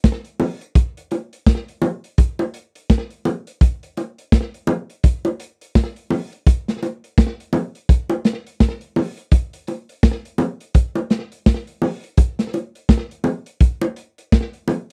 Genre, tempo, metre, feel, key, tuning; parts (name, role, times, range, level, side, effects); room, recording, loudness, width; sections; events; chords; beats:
reggae; 84 BPM; 4/4; swing 60% on 16ths
crunchy breakbeat drum kit; drums; 0.0-14.9 s; hi-hat, kick drum, snare drum; -16 LUFS; equal
bongos; percussion; 0.4-14.9 s; -22 LUFS; equal
little or no reverb; dry, close 1970s-style studio recording; -20 LUFS; mono
0.0-14.9 A section
0.04 | 0.76 1.47 2.18 2.90 | 3.61 4.32 5.04 5.75 | 6.47 7.18 7.89 8.61 | 9.32 10.04 10.75 11.46 | 12.18 12.89 13.61 14.32